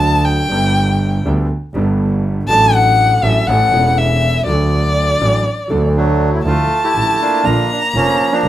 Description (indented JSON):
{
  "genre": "tango",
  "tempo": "121 BPM",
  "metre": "4/4",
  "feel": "rubato",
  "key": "D major",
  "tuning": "A4 = 441 Hz",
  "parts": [
    { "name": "warm violin", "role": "second line", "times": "0.0-8.5 s", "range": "D5 to Bb5", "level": "-15 LUFS", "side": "left 2 dB", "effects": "none" },
    { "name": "warm concert grand piano", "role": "accompaniment", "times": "0.0-8.5 s", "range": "E1 to A4", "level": "-21 LUFS", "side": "equal", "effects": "none" },
    { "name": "warm double bass", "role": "bass", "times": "0.0-8.5 s", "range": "E1 to D2", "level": "-16 LUFS", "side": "right 1 dB", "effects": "none" },
    { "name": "bandoneon", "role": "melody", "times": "6.0-8.5 s", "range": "F3 to G4", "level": "-16 LUFS", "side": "right 2 dB", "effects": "none" }
  ],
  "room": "moderate studio reverb, RT60 0.5 s",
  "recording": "rough home demo mix",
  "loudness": "-12 LUFS",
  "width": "side -13 dB against mid",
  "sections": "0.0-6.5 A section; 6.5-8.5 B section",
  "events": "violin solo 0.0-6.5",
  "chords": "0.0 D; 0.5 Gadd9; 2.5 D/A; 3.5 A; 4.5 D; 6.5 Dmadd9; 7.4 Bb"
}